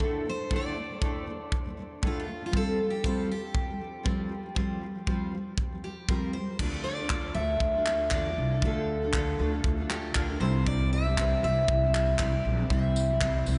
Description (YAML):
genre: acoustic pop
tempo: 118 BPM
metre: 4/4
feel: swing 55% on 16ths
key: D minor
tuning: A4 = 439 Hz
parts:
  - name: picked steel-string acoustic guitar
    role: melody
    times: 0.0-13.6 s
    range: F4 to E5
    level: -34 LUFS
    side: equal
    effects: analog delay
  - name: nylon-string guitar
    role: accompaniment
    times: 0.0-13.6 s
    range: A2 to C5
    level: -36 LUFS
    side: equal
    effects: double-tracked
  - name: modern studio drum kit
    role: drums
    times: 0.0-13.6 s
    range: crash cymbal, handclaps, kick drum, tambourine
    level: -34 LUFS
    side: equal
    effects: none
  - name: upright bass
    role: bass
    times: 6.6-13.6 s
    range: Bb1 to E2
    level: -32 LUFS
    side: equal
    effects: none
room: wet cathedral reverb, RT60 6.2 s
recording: dreamy mix soaked in reverb, nothing above 10.7 kHz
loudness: -29 LUFS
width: mono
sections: 0.0-6.6 A section; 6.6-13.6 B section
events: none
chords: 0.0 Asus4; 2.5 Fsus2; 6.6 Dm; 10.4 C